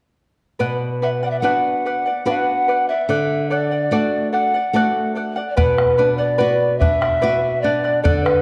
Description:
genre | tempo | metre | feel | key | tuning
andean folk, Andean ensemble | 72 BPM | 3/4 | straight | B minor | A4 = 439 Hz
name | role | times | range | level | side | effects
charango | accompaniment | 0.6-8.4 s | A4 to F#5 | -26 LUFS | equal | none
flamenco guitar | accompaniment | 0.6-8.4 s | B2 to F#4 | -25 LUFS | equal | none
mellow hollow polished pan flute | melody | 1.0-8.4 s | B4 to F#5 | -21 LUFS | equal | none
bombo | percussion | 5.6-8.4 s | none | -22 LUFS | equal | none
room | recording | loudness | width
wet recital hall reverb, RT60 1.3 s | dark, warm production | -19 LUFS | mono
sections
0.6-5.6 A section; 5.6-8.4 B section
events
none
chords
0.6 Bm; 3.1 D; 5.6 Bm

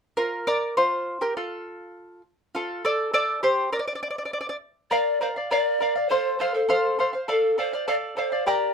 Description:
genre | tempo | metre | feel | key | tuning
andean folk | 101 BPM | 2/4 | straight | unclear | A4 = 443 Hz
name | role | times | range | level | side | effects
charango | accompaniment | 0.2-8.7 s | F4 to Bb5 | -24 LUFS | equal | none
mellow hollow pan flute | melody | 4.9-8.7 s | A4 to D5 | -24 LUFS | left 1 dB | none
room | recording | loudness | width
moderate small room reverb, RT60 0.5 s | close, detailed microphones | -22 LUFS | side -6 dB against mid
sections
0.2-4.9 A section; 4.9-8.7 B section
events
charango solo 0.2-4.9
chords
0.2 Bb5; 1.4 N.C.; 2.5 F69; 3.7 N.C.; 4.9 Bb; 6.1 F; 7.3 Dm

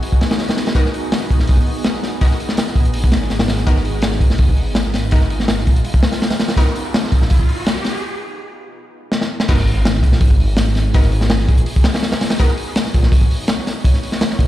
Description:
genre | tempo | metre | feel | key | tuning
drum and bass, jungle | 165 BPM | 4/4 | straight | G# dorian | A4 = 440 Hz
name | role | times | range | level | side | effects
granular cloud pad | sustained chords | 0.0-14.5 s | B3 to C#5 | -28 LUFS | right 1 dB | built-in reverb
crunchy breakbeat drum kit | drums | 0.0-14.5 s | crash cymbal, hi-hat, kick drum, snare drum | -15 LUFS | equal | none
orchestra-hit-like synth stab | stabs | 0.8-6.6, 9.5-12.5 s | B3 to A#4 | -28 LUFS | left 2 dB | built-in reverb, vintage 12-bit sampler grit, dub echo
detuned saw bass | bass | 1.3-7.3, 9.5-14.5 s | G#1 to A#1 | -17 LUFS | equal | none
riser and impact | sound effects | 5.6-10.9 s | none | -26 LUFS | equal | none
room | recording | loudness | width
small room ambience | played on a big sound system in a bare room, large studio reverb | -14 LUFS | side -14 dB against mid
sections
0.0-9.5 A section; 9.5-14.5 B section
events
build-up 0.0-9.5; riser 5.6-8.0; break 8.0-9.5; drum fill 9.1-9.5; drop 9.5-14.5; impact 9.5-10.9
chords
0.0 G#m7

